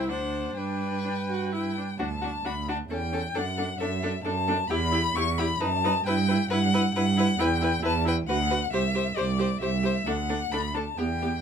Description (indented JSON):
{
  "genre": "quick classical-period movement for string quartet",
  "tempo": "133 BPM",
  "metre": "3/4",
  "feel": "rubato",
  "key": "D major",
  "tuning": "A4 = 442 Hz",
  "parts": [
    { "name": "rich violin", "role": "melody", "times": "0.0-11.4 s", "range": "D5 to C#6", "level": "-29 LUFS", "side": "left 5 dB", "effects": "none" },
    { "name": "rich violin", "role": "second line", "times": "0.0-11.3 s", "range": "F#4 to C5", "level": "-33 LUFS", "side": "left 3 dB", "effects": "none" },
    { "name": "rich viola", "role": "accompaniment", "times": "0.0-11.3 s", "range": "B3 to G4", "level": "-32 LUFS", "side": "right 1 dB", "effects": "none" },
    { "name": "warm cello", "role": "bass", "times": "0.0-11.4 s", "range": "C2 to G2", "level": "-28 LUFS", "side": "right 4 dB", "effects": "none" }
  ],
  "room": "light reverb",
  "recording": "close, detailed microphones",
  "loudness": "-24 LUFS",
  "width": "side -7 dB against mid",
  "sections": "0.0-2.0 A section; 2.0-11.4 B section",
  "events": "none",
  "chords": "0.1 D7; 0.6 G; 2.0 D; 2.9 A7/E (rootless); 3.4 D/F#; 4.7 Em; 5.6 B7/F# (rootless); 6.1 Em/G; 7.4 Em; 8.3 Bm/D; 8.7 C; 10.1 D"
}